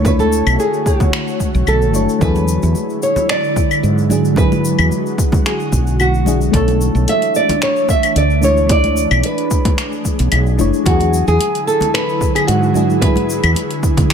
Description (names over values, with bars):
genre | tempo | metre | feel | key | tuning
sunset chillout | 111 BPM | 4/4 | straight | B dorian | A4 = 440 Hz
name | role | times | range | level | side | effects
nylon-string guitar | melody | 0.0-14.1 s | F#4 to E5 | -18 LUFS | right 1 dB | ping-pong delay
mellow FM electric piano | accompaniment | 0.0-14.1 s | F#3 to D5 | -21 LUFS | moving between left 9 dB and right 4 dB | chorus, phaser, auto-pan
ethereal airy pad | sustained chords | 0.0-14.1 s | D3 to C#5 | -21 LUFS | right 1 dB | ensemble chorus, built-in reverb
woody fretless electric bass | bass | 0.0-13.5 s | F#1 to G#2 | -16 LUFS | equal | none
electronic kick drum | drums | 0.0-14.1 s | none | -16 LUFS | equal | none
deep house drum kit | drums | 0.1-14.1 s | claves, finger snaps, hi-hat, shaker | -22 LUFS | left 3 dB | none
congas | percussion | 0.1-14.1 s | none | -25 LUFS | left 2 dB | none
room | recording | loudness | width
light reverb | none | -12 LUFS | side -7 dB against mid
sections
0.0-14.1 A section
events
none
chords
0.0 Bm11; 2.2 E9; 6.5 Bm11; 10.9 E9